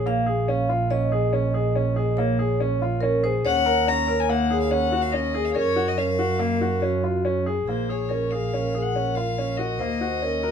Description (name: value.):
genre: contemporary instrumental, chamber music in an uneven meter.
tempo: 142 BPM.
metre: 5/4.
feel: straight.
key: Bb minor.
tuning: A4 = 438 Hz.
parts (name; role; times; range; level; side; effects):
vibraphone with medium mallets; second line; 0.0-10.5 s; Gb4 to F5; -27 LUFS; right 2 dB; none.
clear baby grand piano; arpeggios; 0.0-10.5 s; Bb3 to Bb4; -25 LUFS; left 3 dB; none.
warm double bass; bass; 0.0-10.5 s; Bb1 to Gb2; -26 LUFS; right 4 dB; none.
warm violin; melody; 3.5-10.5 s; C5 to Bb5; -27 LUFS; left 6 dB; none.
room: moderate studio reverb, RT60 0.7 s.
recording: minimal, uncompressed stereo recording.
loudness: -21 LUFS.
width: side -7 dB against mid.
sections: 0.0-7.7 A section; 7.7-10.5 B section.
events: none.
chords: 0.0 Bbm7; 3.5 Ebm7; 5.6 Gbmaj7; 7.7 Bbm7; 9.8 Ebm7.